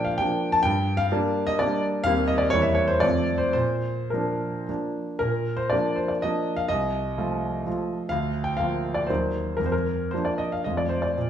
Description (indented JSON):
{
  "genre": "classical, romantic triple-time dance for piano with dotted rhythms",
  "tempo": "100-137 BPM",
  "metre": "3/4",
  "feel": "rubato",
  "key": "Bb major",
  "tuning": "A4 = 439 Hz",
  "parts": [
    { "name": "warm concert grand piano", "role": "solo", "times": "0.0-11.3 s", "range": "C2 to A5", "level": "-22 LUFS", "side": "equal", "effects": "none" }
  ],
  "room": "wet recital hall reverb, RT60 1.6 s",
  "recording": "studio reverb",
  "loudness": "-22 LUFS",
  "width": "side -9 dB against mid",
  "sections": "0.0-5.2 A section; 5.2-11.3 B section",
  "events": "none",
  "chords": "0.0 Bb; 0.6 Gm; 2.0 Cm7/Eb; 2.5 Edim; 3.0 F; 3.5 Bb; 6.7 F7/C; 8.1 Bb/D; 9.1 Ebm; 9.6 Bb/F; 10.7 F",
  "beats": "0.18 | 0.63 1.10 1.60 | 2.05 2.52 3.02 | 3.54 4.11 4.69 | 5.22 5.73 6.24 | 6.71 7.19 7.67 | 8.12 8.60 9.10 | 9.59 10.13 10.65 | 11.16"
}